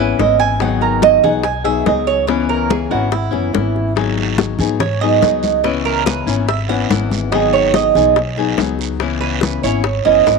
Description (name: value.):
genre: latin, Cuban son and guajira.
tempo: 143 BPM.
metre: 4/4.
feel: straight.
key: G# minor.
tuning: A4 = 440 Hz.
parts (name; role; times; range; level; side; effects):
nylon-string guitar; accompaniment; 0.0-10.4 s; C#3 to G#4; -19 LUFS; left 12 dB; none.
Cuban tres; arpeggios; 0.0-10.4 s; E4 to G#5; -16 LUFS; right 12 dB; none.
upright bass; bass; 0.0-10.4 s; F#1 to G#2; -22 LUFS; left 1 dB; none.
bongos; percussion; 0.2-10.4 s; none; -23 LUFS; left 14 dB; none.
congas; percussion; 0.2-10.4 s; none; -23 LUFS; left 2 dB; none.
guiro; percussion; 4.0-10.4 s; none; -28 LUFS; right 11 dB; none.
room: moderate plate reverb, RT60 2.7 s.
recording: 1960s-style stereo with parts hard left and right.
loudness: -13 LUFS.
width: side -4 dB against mid.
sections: 0.0-10.4 A section.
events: Cuban tres solo 0.0-10.4.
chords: 0.0 C#m7; 0.6 G#m7; 2.3 C#m7; 4.0 G#m7; 5.6 C#m7; 7.3 G#m7; 9.0 C#m9.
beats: 0.19 | 0.61 1.03 1.45 1.86 | 2.28 2.70 3.12 3.54 | 3.96 4.38 4.80 5.22 | 5.64 6.06 6.48 6.90 | 7.32 7.74 8.16 8.58 | 9.01 9.43 9.85 10.27.